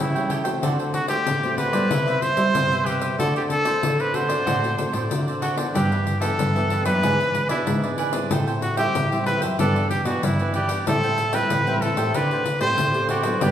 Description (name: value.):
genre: samba and choro.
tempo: 94 BPM.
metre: 4/4.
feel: straight.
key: unclear.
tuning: A4 = 440 Hz.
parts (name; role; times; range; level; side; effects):
bright trumpet; melody; 0.0-13.5 s; E4 to C5; -24 LUFS; equal; none.
cavaquinho; accompaniment; 0.0-13.5 s; D4 to G5; -28 LUFS; right 3 dB; none.
nylon-string guitar; accompaniment; 0.0-13.5 s; G2 to G4; -29 LUFS; left 1 dB; none.
nylon-string guitar; bass; 0.0-13.5 s; F#2 to G3; -27 LUFS; right 1 dB; none.
pandeiro; percussion; 0.2-13.5 s; none; -27 LUFS; left 2 dB; none.
room: wet recital hall reverb, RT60 1.5 s.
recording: recorded in a church or concert hall.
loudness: -19 LUFS.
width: side -10 dB against mid.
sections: 0.0-13.5 A section.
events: none.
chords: 0.0 A7; 0.6 D7; 1.9 Cmaj7; 3.2 D7; 5.8 G6; 7.0 E7/G#; 8.3 Am7; 9.6 Em7/G; 10.9 Am7; 12.1 D7sus4.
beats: | 0.63 1.27 1.91 2.55 | 3.19 3.83 4.47 5.11 | 5.75 6.39 7.03 7.67 | 8.31 8.95 9.59 10.23 | 10.86 11.50 12.14 12.78 | 13.42.